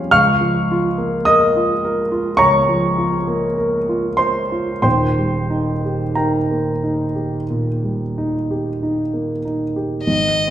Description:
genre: classical, romantic duo for violin and grand piano.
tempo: 45-53 BPM.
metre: 4/4.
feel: rubato.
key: unclear.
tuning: A4 = 439 Hz.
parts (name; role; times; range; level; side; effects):
dark concert grand piano; accompaniment; 0.0-10.5 s; Eb1 to F6; -16 LUFS; equal; none.
warm violin; melody; 10.0-10.5 s; Eb5; -16 LUFS; left 1 dB; none.
room: wet recital hall reverb, RT60 1.4 s.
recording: none.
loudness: -16 LUFS.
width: side -10 dB against mid.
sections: 0.0-10.1 A section.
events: none.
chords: 0.1 Bbm/Db; 4.8 Eb.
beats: | 0.10 1.25 2.40 3.58 | 4.85 6.16 7.49 8.79 | 10.05.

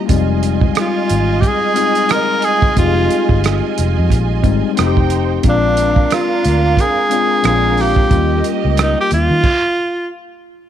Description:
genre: lush 1970s-style soul.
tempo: 90 BPM.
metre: 4/4.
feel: swing 58% on 16ths.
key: F minor.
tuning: A4 = 440 Hz.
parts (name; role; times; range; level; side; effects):
warm studio string section; second line; 0.0-9.4 s; Bb3 to Ab5; -22 LUFS; right 12 dB; none.
tine electric piano; accompaniment; 0.0-9.5 s; G3 to Ab4; -19 LUFS; left 12 dB; none.
vintage muted fingered electric bass; bass; 0.1-9.4 s; F1 to Eb3; -16 LUFS; equal; none.
warm soul drum kit; drums; 0.1-9.6 s; crash cymbal, hi-hat, kick drum, rim click; -17 LUFS; right 2 dB; none.
edgy tenor saxophone; melody; 0.8-10.1 s; D4 to Bb4; -16 LUFS; equal; none.
room: small room ambience.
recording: 1960s-style stereo with parts hard left and right.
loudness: -12 LUFS.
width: side -10 dB against mid.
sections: 0.0-10.7 A section.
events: stop 9.4-10.7.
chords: 0.1 Fm7; 4.8 F7; 5.4 Bb7; 8.1 Eb7; 9.4 N.C..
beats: | 0.10 0.77 1.43 2.10 | 2.77 3.44 4.10 4.77 | 5.44 6.11 6.77 7.44 | 8.11 8.77 9.44.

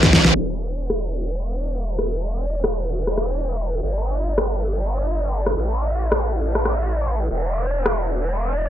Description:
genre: heavy wobble dubstep.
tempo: 138 BPM.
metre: 4/4.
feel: half-time.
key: E minor.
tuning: A4 = 440 Hz.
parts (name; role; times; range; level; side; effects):
growl bass; bass; 0.0-8.7 s; E1 to C2; -22 LUFS; equal; chorus, overdrive.
dubstep drum kit; drums; 0.0-7.9 s; crash cymbal, hi-hat, rim click, snare drum; -19 LUFS; equal; none.
room: little or no reverb.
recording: low-pass filter.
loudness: -20 LUFS.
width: side -11 dB against mid.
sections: 0.3-8.7 A section.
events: drum fill 0.0-0.3; band accent 0.2; filter sweep 0.3-8.7.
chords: none.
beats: | 0.35 0.78 1.22 1.65 | 2.09 2.52 2.96 3.39 | 3.83 4.26 4.70 5.13 | 5.57 6.00 6.44 6.87 | 7.30 7.74 8.18 8.61.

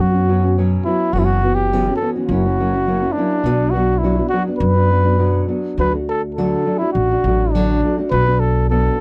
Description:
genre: mexican folk, mariachi.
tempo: 103 BPM.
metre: 4/4.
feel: straight.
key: B minor, D major from 5.8 s.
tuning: A4 = 440 Hz.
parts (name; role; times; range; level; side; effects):
dark trumpet; melody; 0.0-9.0 s; D4 to B4; -22 LUFS; equal; none.
nylon-string guitar; accompaniment; 0.0-9.0 s; F#2 to F#4; -22 LUFS; equal; none.
upright bass; bass; 0.0-8.9 s; F#1 to F#2; -21 LUFS; equal; none.
room: light reverb.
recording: dry, close 1970s-style studio recording.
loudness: -17 LUFS.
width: mono.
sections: 0.0-5.8 A section; 5.8-9.0 B section.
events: none.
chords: 0.0 Bsus2; 1.1 F#7sus4; 2.3 F#7; 3.4 Bm; 5.8 D; 8.1 Bm.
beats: 0.00 0.57 | 1.14 1.72 2.29 2.87 | 3.44 4.02 4.61 5.20 | 5.79 6.38 6.96 7.54 | 8.13 8.71.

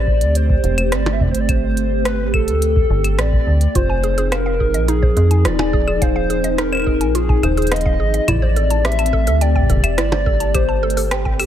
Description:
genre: IDM.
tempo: 106 BPM.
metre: 4/4.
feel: straight.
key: unclear.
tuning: A4 = 441 Hz.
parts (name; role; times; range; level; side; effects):
warbly nostalgic lead; melody; 0.0-11.5 s; G4 to E5; -21 LUFS; left 1 dB; wide subtle chorus, cassette tape, tape echo.
glassy FM pad; sustained chords; 0.0-11.5 s; F3 to Ab4; -23 LUFS; left 1 dB; ensemble chorus, built-in reverb, phaser.
metallic FM bass; bass; 0.0-11.5 s; Eb1 to F2; -18 LUFS; equal; none.
electronic kick drum; drums; 0.1-11.4 s; none; -19 LUFS; equal; none.
glitchy drum kit; drums; 0.2-11.5 s; claves, hi-hat, percussion blips, rim click; -24 LUFS; equal; overdrive, analog delay.
mallet-like synth pluck; arpeggios; 3.8-11.5 s; Eb4 to A5; -26 LUFS; right 2 dB; chorus, cassette tape, tape echo.
room: light reverb.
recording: echo-heavy mix.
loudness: -14 LUFS.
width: side -10 dB against mid.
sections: 0.0-11.5 A section.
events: none.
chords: 0.0 Am7; 3.8 Fm7; 8.3 Am7.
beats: 0.36 0.92 | 1.49 2.06 2.62 3.19 | 3.75 4.32 4.89 5.45 | 6.02 6.58 7.15 7.72 | 8.28 8.85 9.41 9.98 | 10.55 11.11.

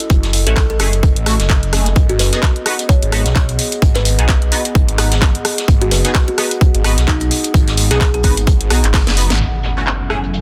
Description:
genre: bass house.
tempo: 129 BPM.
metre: 4/4.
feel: swing 57% on 16ths.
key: unclear.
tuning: A4 = 440 Hz.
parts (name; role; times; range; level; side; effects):
garage drum kit; drums; 0.0-10.2 s; handclaps, hi-hat, rim click, snare drum; -22 LUFS; equal; low-pass filter on cymbals, low-pass filter on hats, soft clipping on snare, low-pass filter on snare.
vintage brush drum kit; drums; 0.0-10.4 s; hi-hat, snare drum; -30 LUFS; equal; none.
warbly tape-like pad; texture; 0.0-10.4 s; B3 to F#5; -29 LUFS; equal; chorus, built-in reverb, sidechain pumping.
phased detuned saw bass; bass; 0.1-9.4 s; F#1 to B1; -19 LUFS; equal; phaser, overdrive, sidechain pumping.
electronic kick drum; drums; 0.1-9.0 s; none; -14 LUFS; equal; none.
kalimba; melody; 0.5-8.8 s; D#4 to C#5; -26 LUFS; equal; tape echo.
band-passed chord stab; stabs; 0.5-10.2 s; A3 to B4; -26 LUFS; equal; phaser, ensemble chorus, sidechain pumping, tape echo.
dark analog pad; sustained chords; 9.9-10.4 s; F#3 to A4; -29 LUFS; equal; chorus, phaser, sidechain pumping.
impact; sound effects; 9.4-10.4 s; none; -23 LUFS; equal; none.
room: small room ambience.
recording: dense, heavily limited modern master.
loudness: -14 LUFS.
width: mono.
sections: 0.0-9.4 A section; 9.4-10.4 B section.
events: drum fill 8.9-9.4; impact 9.4-10.4; filter sweep on drum 9.4-10.4.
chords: 0.0 F#m7; 2.0 G#m7; 9.4 F#m7.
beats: | 0.10 0.56 1.03 1.50 | 1.96 2.43 2.89 3.36 | 3.82 4.29 4.75 5.22 | 5.68 6.15 6.61 7.08 | 7.54 8.01 8.47 8.94 | 9.40 9.87 10.33.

